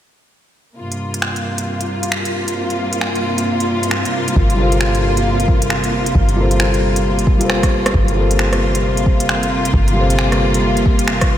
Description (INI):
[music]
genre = future garage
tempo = 134 BPM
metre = 4/4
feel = swing 61% on 16ths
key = G minor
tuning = A4 = 440 Hz
[part]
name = rich symphonic string section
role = sustained chords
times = 0.8-11.4 s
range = G2 to F4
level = -19 LUFS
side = equal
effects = sidechain pumping
[part]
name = flickering grainy texture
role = texture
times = 1.3-8.0 s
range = F4 to F5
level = -26 LUFS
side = equal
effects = built-in reverb
[part]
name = organic electronic drum kit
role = drums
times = 0.9-11.3 s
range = finger snaps, hi-hat, rim click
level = -22 LUFS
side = equal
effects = overdrive
[part]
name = soft 808-style bass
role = bass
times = 4.4-11.4 s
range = G1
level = -19 LUFS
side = equal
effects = sidechain pumping
[part]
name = electronic kick drum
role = drums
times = 4.4-11.3 s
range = none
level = -15 LUFS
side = equal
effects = overdrive
[part]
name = felt-muted upright piano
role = accompaniment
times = 4.5-11.4 s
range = G3 to C5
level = -20 LUFS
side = left 1 dB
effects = vintage 12-bit sampler grit, sidechain pumping, low-pass filter, tape echo
[sound]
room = moderate huge ambient reverb, RT60 4.0 s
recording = dreamy mix soaked in reverb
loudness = -14 LUFS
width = side -11 dB against mid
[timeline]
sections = 0.8-7.9 A section; 7.9-11.4 B section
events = drum fill 7.5-7.9; filter sweep on felt piano 7.9-11.4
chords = 0.8 Gm11